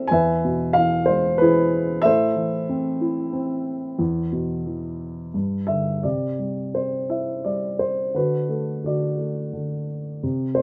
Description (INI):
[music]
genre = classical, lyrical solo piano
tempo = 83-95 BPM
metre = 3/4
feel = rubato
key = C lydian from 6.0 s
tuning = A4 = 444 Hz
[part]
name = dark baby grand piano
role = solo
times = 0.0-10.6 s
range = E2 to G#5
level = -23 LUFS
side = equal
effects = none
[sound]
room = light reverb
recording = none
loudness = -23 LUFS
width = mono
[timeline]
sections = 0.0-6.0 A section; 6.0-10.6 B section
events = none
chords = 0.1 E; 2.0 Am; 4.0 E5; 5.3 G5; 6.0 C; 8.2 D